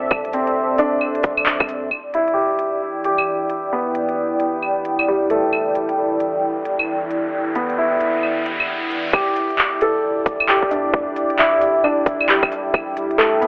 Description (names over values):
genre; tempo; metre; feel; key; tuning
future garage; 133 BPM; 4/4; swing 62% on 16ths; E minor; A4 = 438 Hz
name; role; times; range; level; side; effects
felt-muted upright piano; accompaniment; 0.0-13.5 s; G3 to A4; -23 LUFS; equal; sidechain pumping, low-pass filter, tape echo
dark analog pad; sustained chords; 0.0-13.5 s; E3 to G5; -25 LUFS; equal; chorus, sidechain pumping
warm sub bass; bass; 0.0-1.9, 9.3-13.0 s; D1 to E2; -49 LUFS; equal; sidechain pumping
electronic kick drum; drums; 0.1-1.7, 9.1-12.9 s; none; -24 LUFS; equal; overdrive, vintage 12-bit sampler grit
organic electronic drum kit; drums; 0.1-13.5 s; cabasa, claves, crash cymbal, handclaps, hi-hat; -22 LUFS; equal; overdrive, vintage 12-bit sampler grit
riser; sound effects; 6.4-9.1 s; none; -31 LUFS; equal; none
room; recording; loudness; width
light reverb; dry, gritty hardware recording, telephone sound; -20 LUFS; mono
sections
0.0-1.9 A section; 1.9-9.1 B section; 9.1-13.5 A section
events
filter sweep on felt piano 1.9-9.1; riser 6.4-9.1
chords
0.0 C69; 1.9 Em7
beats
| 0.11 0.56 1.01 1.47 | 1.92 2.37 2.82 3.27 | 3.72 4.17 4.62 5.07 | 5.53 5.98 6.43 6.88 | 7.33 7.78 8.23 8.68 | 9.13 9.59 10.04 10.49 | 10.94 11.39 11.84 12.29 | 12.74 13.19